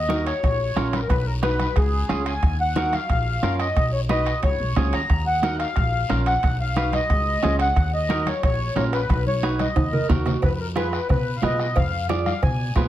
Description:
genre	latin, cumbia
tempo	180 BPM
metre	4/4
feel	straight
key	Eb minor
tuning	A4 = 440 Hz
part	accordion	melody	0.0-12.7 s	Ab4 to Bb5	-25 LUFS	left 1 dB	light tremolo tuning
part	upright bass	bass	0.0-12.9 s	Bb1 to Cb3	-25 LUFS	equal	none
part	clean electric guitar	accompaniment	0.1-12.9 s	Db4 to D5	-28 LUFS	right 4 dB	spring reverb
part	bombo	percussion	0.1-12.9 s	none	-25 LUFS	right 1 dB	none
part	congas	percussion	0.1-12.9 s	none	-29 LUFS	left 2 dB	none
part	guiro	percussion	0.1-12.9 s	none	-40 LUFS	left 5 dB	none
part	timbales and cowbell	percussion	0.1-12.9 s	none	-33 LUFS	right 5 dB	none
part	warm clarinet	second line	9.9-10.4 s	Gb4 to Bb4	-28 LUFS	right 5 dB	none
room	light reverb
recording	none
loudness	-20 LUFS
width	side -13 dB against mid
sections	0.0-10.4 A section; 10.4-12.9 B section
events	drum fill 9.1-10.4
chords	0.4 Bbm; 1.1 B; 1.8 Db; 2.4 Ebm; 3.1 Bbm; 3.8 B; 4.4 Db; 5.1 Ebm; 5.8 Bbm; 6.4 B; 7.1 Db; 7.8 Ebm; 8.4 Bbm; 9.1 B; 9.8 Ebm; 10.4 Fdim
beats	0.10 0.43 0.76 | 1.10 1.43 1.76 2.10 | 2.43 2.77 3.10 3.43 | 3.77 4.10 4.43 4.76 | 5.10 5.43 5.76 6.10 | 6.43 6.76 7.10 7.43 | 7.76 8.10 8.43 8.77 | 9.10 9.43 9.76 10.10 | 10.43 10.76 11.10 11.43 | 11.76 12.09 12.43 12.76

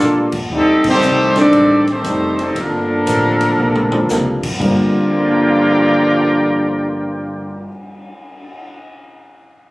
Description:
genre	jazz, big band swing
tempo	117 BPM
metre	4/4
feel	swing 67% on 8ths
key	G minor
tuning	A4 = 444 Hz
part	clear trumpet section	melody	0.0-7.7 s	A3 to G5	-18 LUFS	equal	none
part	warm trombone section	second line	0.0-7.6 s	G2 to Eb4	-15 LUFS	equal	none
part	archtop guitar, miked and amplified	accompaniment	0.0-8.2 s	G2 to A4	-23 LUFS	left 1 dB	none
part	upright bass	bass	0.0-7.6 s	F1 to Bb2	-25 LUFS	equal	none
part	swinging big-band drum kit	drums	0.3-8.6 s	crash cymbal, cymbal swell, hi-hat, kick drum, ride cymbal, snare drum, toms	-27 LUFS	equal	none
part	clear grand piano	accompaniment	2.0-8.7 s	G2 to C7	-22 LUFS	left 1 dB	none
room	moderate echo chamber reverb, RT60 1.8 s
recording	recorded on a phone in the room, club reverb, compression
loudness	-12 LUFS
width	side -20 dB against mid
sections	0.5-4.6 A section; 4.6-8.7 B section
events	band accent 0.8; drum fill 3.6-4.1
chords	0.0 Gm9; 0.5 Am7b5; 2.6 Gm11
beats	0.00 | 0.51 1.02 1.53 2.04 | 2.56 3.07 3.58 4.09 | 4.61 5.12 5.63 6.15 | 6.66 7.18 7.69 8.20

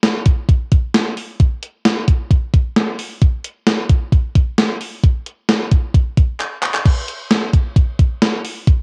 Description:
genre	pop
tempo	132 BPM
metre	4/4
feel	straight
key	none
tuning	none
part	gated 80s digital drum machine	drums	0.0-8.8 s	crash cymbal, handclaps, hi-hat, kick drum, snare drum	-16 LUFS	equal	gated reverb, gated reverb snare, cassette tape
room	light reverb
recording	home recording on cassette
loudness	-17 LUFS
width	mono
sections	0.0-8.8 A section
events	drum fill 6.4-6.9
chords	none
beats	0.04 0.49 0.94 | 1.40 1.85 2.31 2.76 | 3.22 3.67 4.13 4.58 | 5.04 5.49 5.95 6.40 | 6.85 7.31 7.76 8.22 | 8.67

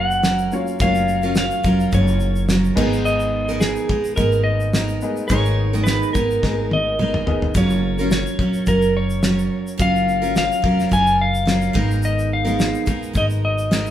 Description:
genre	acoustic pop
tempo	107 BPM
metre	4/4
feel	swing 55% on 16ths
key	F# major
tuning	A4 = 440 Hz
part	clean lap steel guitar	melody	0.0-13.9 s	G#4 to G#5	-22 LUFS	left 1 dB	none
part	picked steel-string acoustic guitar	accompaniment	0.0-13.9 s	G#2 to A#4	-21 LUFS	right 2 dB	none
part	warm upright piano	accompaniment	0.0-7.6 s	A#3 to D#5	-28 LUFS	left 3 dB	none
part	upright bass	bass	0.0-13.9 s	E#1 to A#1	-23 LUFS	equal	none
part	cloth-damped thuddy drum kit	drums	0.1-13.9 s	crash cymbal, kick drum, shaker, snare drum, toms	-23 LUFS	equal	none
room	moderate large studio reverb, RT60 1.0 s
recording	band playing live in one room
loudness	-16 LUFS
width	side -11 dB against mid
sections	0.0-7.5 A section; 7.5-13.9 A section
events	drum fill 6.4-7.5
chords	0.0 F#maj7; 2.8 G#madd9; 7.5 F#maj7; 11.8 G#madd9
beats	0.24 | 0.81 1.37 1.93 2.49 | 3.06 3.62 4.18 4.74 | 5.30 5.87 6.43 6.99 | 7.55 8.11 8.67 9.23 | 9.79 10.36 10.92 11.48 | 12.04 12.60 13.16 13.72

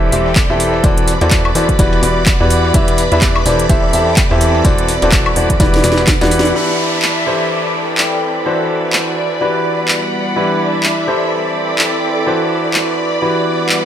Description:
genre	piano house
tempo	126 BPM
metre	4/4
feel	swing 58% on 16ths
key	unclear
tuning	A4 = 440 Hz
part	string machine, violins	sustained chords	0.0-13.8 s	D5 to B5	-21 LUFS	right 1 dB	ensemble chorus, sidechain pumping
part	bright baby grand piano	riff	0.0-13.8 s	E3 to E5	-16 LUFS	left 1 dB	sidechain pumping, digital delay
part	plucky analog bass	bass	0.0-6.5 s	E1 to E2	-18 LUFS	equal	sidechain pumping
part	warm chamber string section	texture	0.0-13.8 s	E3 to G5	-22 LUFS	right 1 dB	sidechain pumping
part	dusty soul sampler-style drum kit	drums	0.1-6.4 s	hi-hat, snare drum, tambourine	-27 LUFS	left 1 dB	none
part	house drum kit	drums	0.1-13.8 s	handclaps, hi-hat, snare drum, woodblock	-17 LUFS	equal	overdrive
part	electronic kick drum	drums	0.4-6.2 s	none	-15 LUFS	equal	overdrive
part	downlifter	sound effects	6.6-10.4 s	none	-24 LUFS	equal	none
room	moderate digital room reverb, RT60 1.1 s, digital ambience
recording	none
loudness	-11 LUFS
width	side -10 dB against mid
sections	0.0-6.6 A section; 6.6-13.8 B section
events	drum fill 5.6-6.6; band accent 6.4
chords	0.0 Am7/E; 0.8 D7/E; 1.8 Gmaj7/E; 3.5 Am7/E; 4.6 D7/E; 5.6 Gmaj7/E; 7.3 Am7/E; 8.5 D7/E; 9.4 Gmaj7/E; 11.1 Am7/E; 12.3 D7/E; 13.2 Gmaj7/E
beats	0.36 | 0.84 1.31 1.79 2.27 | 2.74 3.22 3.69 4.17 | 4.65 5.12 5.60 6.08 | 6.55 7.03 7.50 7.98 | 8.46 8.93 9.41 9.88 | 10.36 10.84 11.31 11.79 | 12.27 12.74 13.22 13.70

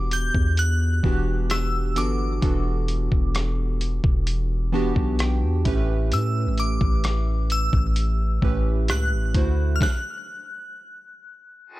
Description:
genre	contemporary R&B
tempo	65 BPM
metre	4/4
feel	straight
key	E minor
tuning	A4 = 440 Hz
part	glassy synth bell	melody	0.0-11.8 s	D6 to G6	-30 LUFS	left 1 dB	chorus, phaser, analog delay
part	warm analog keys	accompaniment	0.0-9.8 s	A2 to A5	-28 LUFS	right 2 dB	chorus
part	long sustained 808-style bass	bass	0.0-9.8 s	E1 to A2	-23 LUFS	equal	none
part	dusty soul sampler-style drum kit	drums	0.1-10.0 s	hi-hat, kick drum, rim click, snare drum	-23 LUFS	equal	vintage 12-bit sampler grit
part	reverse cymbal	sound effects	11.7-11.8 s	none	-38 LUFS	left 2 dB	none
room	little or no reverb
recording	echo-heavy mix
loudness	-20 LUFS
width	side -17 dB against mid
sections	0.0-11.8 A section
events	synth keys fill 4.3-6.1; stop 9.8-11.8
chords	0.0 Em7; 5.7 A9; 9.3 D7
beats	0.58 1.50 | 2.42 3.35 4.27 5.19 | 6.12 7.04 7.96 8.88 | 9.81 10.73 11.65

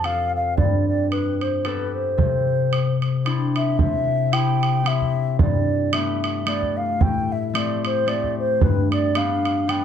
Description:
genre	celtic folk, Celtic waltz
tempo	112 BPM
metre	3/4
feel	swing 56% on 8ths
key	C major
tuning	A4 = 440 Hz
part	mellow hollow wooden flute	melody	0.0-9.8 s	B4 to G5	-24 LUFS	equal	none
part	concert harp	accompaniment	0.0-9.8 s	F2 to A4	-22 LUFS	left 3 dB	none
part	bodhran	percussion	0.0-9.8 s	none	-24 LUFS	right 3 dB	none
room	moderate studio reverb, RT60 0.6 s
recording	none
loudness	-19 LUFS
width	side -8 dB against mid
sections	0.0-3.8 A section; 3.8-9.8 B section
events	none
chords	0.0 F; 0.6 Gadd9; 2.2 Cadd9; 3.8 C; 5.4 Gadd9; 7.0 Am7; 8.6 G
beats	0.04 | 0.58 1.11 1.65 | 2.19 2.72 3.26 | 3.79 4.33 4.86 | 5.40 5.93 6.47 | 7.00 7.54 8.08 | 8.61 9.15 9.69

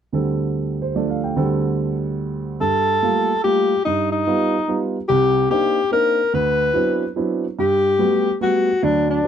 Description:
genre	jazz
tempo	145 BPM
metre	3/4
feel	swing 64% on 8ths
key	unclear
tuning	A4 = 442 Hz
part	dark upright piano	accompaniment	0.1-9.3 s	C2 to G5	-21 LUFS	right 4 dB	none
part	warm alto saxophone	melody	2.6-9.3 s	D4 to B4	-18 LUFS	left 3 dB	none
room	light reverb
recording	close, detailed microphones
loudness	-17 LUFS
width	side -8 dB against mid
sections	0.1-2.6 A section; 2.6-9.3 B section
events	none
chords	0.1 D7sus4; 2.6 Gm9; 3.8 Gaug7; 5.1 Cm9; 6.3 D13; 7.6 Gmaj9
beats	| 0.13 0.54 0.95 | 1.37 1.78 2.19 | 2.60 3.02 3.43 | 3.84 4.26 4.67 | 5.08 5.50 5.91 | 6.32 6.74 7.15 | 7.56 7.98 8.39 | 8.81 9.22

